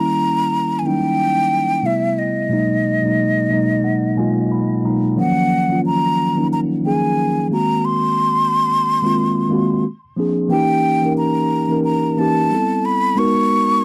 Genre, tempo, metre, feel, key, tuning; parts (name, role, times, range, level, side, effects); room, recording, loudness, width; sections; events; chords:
R&B; 90 BPM; 4/4; swing 57% on 16ths; Eb minor; A4 = 440 Hz
breathy concert flute; melody; 0.0-13.8 s; Eb5 to Db6; -21 LUFS; equal
mellow tine electric piano; accompaniment; 0.0-13.8 s; Cb3 to Cb6; -20 LUFS; equal
moderate booth ambience, RT60 0.2 s; dry, close 1970s-style studio recording; -18 LUFS; mono
0.0-5.2 A section; 5.2-13.8 B section
tine electric piano fill 3.2-5.2
0.0 Eb7b9; 1.8 Am9; 2.5 Abm9; 5.2 Ebm9; 7.5 Ab9; 9.8 Bb9; 10.5 Eb7b9; 12.5 Am9; 13.2 Abm9